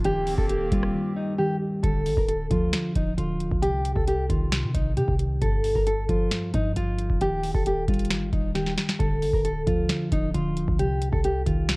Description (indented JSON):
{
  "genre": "hip hop, trap",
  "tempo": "134 BPM",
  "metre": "4/4",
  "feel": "half-time",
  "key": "D phrygian",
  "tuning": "A4 = 442 Hz",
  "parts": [
    { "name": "nylon-string guitar", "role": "melody", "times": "0.0-11.8 s", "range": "Eb4 to Bb4", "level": "-27 LUFS", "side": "equal", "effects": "low-pass filter" },
    { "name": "muted felt-like synth keys", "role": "accompaniment", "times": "0.0-11.8 s", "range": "G2 to G3", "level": "-28 LUFS", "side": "equal", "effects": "chorus, low-pass filter" },
    { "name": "hollow soft pad", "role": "sustained chords", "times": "0.0-1.8 s", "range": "Eb3 to G4", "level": "-36 LUFS", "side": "right 1 dB", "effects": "chorus" },
    { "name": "clean 808-style bass", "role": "bass", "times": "0.0-11.8 s", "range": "D1 to C3", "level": "-29 LUFS", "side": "equal", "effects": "none" },
    { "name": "booming analog drum machine", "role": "drums", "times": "0.0-11.8 s", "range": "hi-hat, kick drum, rim click, snare drum", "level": "-26 LUFS", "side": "equal", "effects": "none" }
  ],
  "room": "little or no reverb",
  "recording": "worn, warbling old tape, cassette tape, warbly pitch drift",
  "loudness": "-22 LUFS",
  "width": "side -26 dB against mid",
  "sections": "0.0-1.8 A section; 1.8-11.8 B section",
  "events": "break 0.9-1.8; drum fill 8.6-9.0",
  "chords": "0.0 Eb6; 1.8 Dm; 3.6 Cm7; 5.4 Ebadd9 (rootless); 7.2 Eb; 9.0 Dm; 10.8 Cm"
}